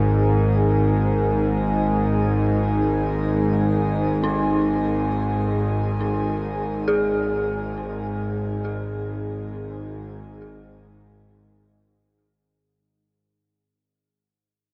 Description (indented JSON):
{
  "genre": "ambient",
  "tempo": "free time",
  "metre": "none",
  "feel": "none",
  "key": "unclear",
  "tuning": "A4 = 439 Hz",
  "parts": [
    { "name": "dark analog pad", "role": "sustained chords", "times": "0.0-12.6 s", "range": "G#3 to G#5", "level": "-28 LUFS", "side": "equal", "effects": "chorus, shimmer reverb" },
    { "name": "dark detuned synth bell", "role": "arpeggios", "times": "0.0-13.9 s", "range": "D#4 to G#4", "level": "-29 LUFS", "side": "equal", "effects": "chorus, phaser, delay, shimmer reverb" },
    { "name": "bowed-like drone", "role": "drone", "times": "0.0-12.7 s", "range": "G#1 to G#2", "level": "-25 LUFS", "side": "equal", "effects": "built-in reverb" }
  ],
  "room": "wet huge ambient reverb, RT60 7.9 s",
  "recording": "dark, warm production, nothing above 11.0 kHz",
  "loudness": "-22 LUFS",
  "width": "mono",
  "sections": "0.0-12.6 A section",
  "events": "fade-out on analog synth pad 0.0-12.6; fade-out 6.3-12.6",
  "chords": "0.0 G#5",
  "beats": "free time"
}